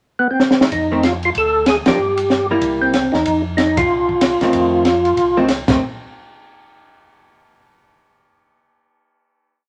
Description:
soul jazz organ trio; 189 BPM; 4/4; swing 62% on 8ths; F mixolydian; A4 = 441 Hz
percussive tonewheel organ; melody; 0.2-5.4 s; B3 to A4; -18 LUFS; equal; chorus vibrato, slow rotary speaker
compact cocktail drum kit; drums; 0.4-5.7 s; crash cymbal, hi-hat, kick drum, ride cymbal, snare drum; -21 LUFS; equal
mellow tonewheel organ; bass; 0.7-5.8 s; C2 to G2; -30 LUFS; equal; chorus vibrato, slow rotary speaker
archtop guitar, miked and amplified; accompaniment; 0.9-5.8 s; Eb3 to E4; -22 LUFS; equal
moderate large studio reverb, RT60 1.0 s; -16 LUFS; mono
0.0-0.7 pickup bar; 0.7-5.8 A section; 5.8-7.1 final hit
drum fill 0.4-0.7; band accent 1.8, 3.7
0.0 N.C.; 0.7 F7; 1.3 Dm; 2.0 Gm; 2.6 C7; 3.2 F7; 5.8 N.C.
0.08 0.40 | 0.71 1.03 1.34 1.66 | 1.98 2.30 2.61 2.93 | 3.25 3.57 3.89 4.21 | 4.52 4.84 5.16 5.48 | 5.80

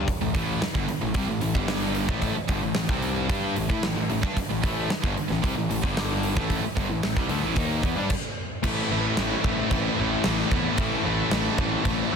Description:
hard rock; 112 BPM; 4/4; straight; A minor; A4 = 438 Hz
sludgy distorted guitar; riff; 0.0-12.2 s; G2 to G4; -29 LUFS; left 12 dB; overdrive
fuzz picked electric bass; bass; 0.0-12.2 s; G1 to A2; -31 LUFS; right 1 dB; overdrive
huge arena drum kit; drums; 0.1-12.0 s; crash cymbal, hi-hat, kick drum, snare drum; -27 LUFS; right 1 dB; soft clipping on kick
high-gain distorted guitar; riff; 0.2-12.2 s; G2 to G4; -29 LUFS; right 13 dB; distortion
high-gain distorted guitar; riff; 8.6-12.2 s; A2 to E4; -31 LUFS; left 1 dB; distortion
small room ambience; dense, heavily limited modern master; -23 LUFS; side -6 dB against mid
0.0-8.6 A section; 8.6-12.2 B section
stop 8.1-8.6
0.0 Am; 1.6 G5; 2.1 Am; 5.8 G5; 6.4 Am
| 0.08 0.61 1.15 1.69 | 2.22 2.76 3.29 3.83 | 4.36 4.90 5.43 5.97 | 6.50 7.04 7.58 8.11 | 8.64 9.18 9.71 10.25 | 10.78 11.32 11.85

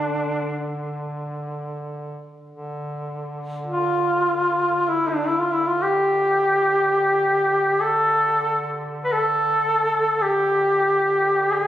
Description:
caucasian folk, Caucasian lament; free time; D minor; A4 = 441 Hz
warm duduk; melody; 0.0-11.7 s; D4 to B4; -18 LUFS; equal
warm duduk; drone; 0.0-11.7 s; D3; -32 LUFS; equal
moderate church reverb, RT60 2.9 s; recorded on a phone in the room, studio ambience; -18 LUFS; side -12 dB against mid
0.0-2.5 A section; 2.5-11.7 A section
free time

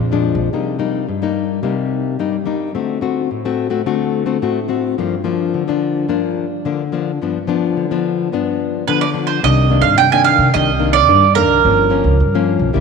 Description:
samba; 108 BPM; 4/4; straight; C minor; A4 = 438 Hz
nylon-string guitar; accompaniment; 0.0-12.8 s; F2 to F#4; -17 LUFS; left 7 dB
upright bass; bass; 0.0-0.5, 9.4-12.8 s; G1 to C3; -16 LUFS; right 2 dB
mandolin; melody; 8.9-12.8 s; Bb4 to Ab5; -13 LUFS; right 10 dB
wet plate reverb, RT60 3.0 s; 1960s-style stereo with parts hard left and right; -14 LUFS; side -5 dB against mid
0.5-9.4 A section; 9.4-12.8 B section
0.0 Bb7; 0.5 Cm7; 2.7 D7; 5.0 Gm7; 7.2 G7; 9.4 Cm9; 11.6 Gm7b5
| 0.52 1.08 1.63 2.19 | 2.75 3.31 3.87 4.42 | 4.98 5.54 6.09 6.65 | 7.21 7.76 8.32 8.88 | 9.43 9.98 10.54 11.09 | 11.64 12.20 12.75

